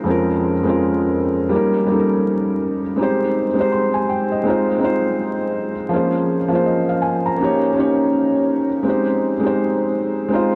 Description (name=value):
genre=hip hop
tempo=82 BPM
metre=4/4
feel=swing 59% on 16ths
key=Ab major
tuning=A4 = 441 Hz
part: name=felt-muted upright piano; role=solo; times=0.0-10.6 s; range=F2 to C6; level=-19 LUFS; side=equal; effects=cassette tape, low-pass filter
room=wet huge ambient reverb, RT60 7.7 s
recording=dreamy mix soaked in reverb, vinyl crackle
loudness=-19 LUFS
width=mono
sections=0.0-10.6 A section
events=none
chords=0.1 Bbm9/F; 1.5 Eb7; 3.0 Abmaj7; 4.5 Fm7; 5.9 Bbm9/F; 7.4 Eb7; 8.8 Abmaj7